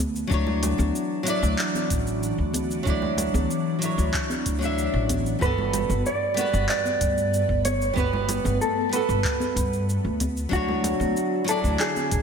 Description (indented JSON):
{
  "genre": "sunset chillout",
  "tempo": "94 BPM",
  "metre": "4/4",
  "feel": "straight",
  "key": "G lydian",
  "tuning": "A4 = 440 Hz",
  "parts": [
    { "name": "ethereal airy pad", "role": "sustained chords", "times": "0.0-12.2 s", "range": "D3 to F#4", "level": "-33 LUFS", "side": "left 1 dB", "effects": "ensemble chorus, built-in reverb, phaser" },
    { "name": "upright bass", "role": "bass", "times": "0.0-12.2 s", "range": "G1 to G2", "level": "-27 LUFS", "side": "equal", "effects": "none" },
    { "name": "deep house drum kit", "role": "drums", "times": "0.0-12.2 s", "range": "cabasa, handclaps, hi-hat", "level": "-31 LUFS", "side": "equal", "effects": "slapback echo" },
    { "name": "flamenco guitar", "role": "accompaniment", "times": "0.3-12.2 s", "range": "F#3 to E5", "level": "-28 LUFS", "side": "moving between left 4 dB and right 6 dB", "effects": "auto-pan, ping-pong delay, slapback echo" },
    { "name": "electronic kick drum", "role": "drums", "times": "0.3-12.2 s", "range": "none", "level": "-28 LUFS", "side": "equal", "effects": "none" },
    { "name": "congas", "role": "percussion", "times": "0.5-12.1 s", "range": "none", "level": "-33 LUFS", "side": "equal", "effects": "slapback echo" },
    { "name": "mellow electric guitar", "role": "melody", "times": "5.4-12.2 s", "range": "F#4 to D5", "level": "-26 LUFS", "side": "right 2 dB", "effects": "harmonic tremolo, digital delay, slapback echo" }
  ],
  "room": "moderate lush hall reverb, RT60 1.8 s, small room ambience",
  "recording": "big arena sound",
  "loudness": "-22 LUFS",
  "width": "side -6 dB against mid",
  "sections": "0.0-12.2 A section",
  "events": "none",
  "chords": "0.0 Dmaj9; 5.4 Gmaj9; 10.2 Dmaj9"
}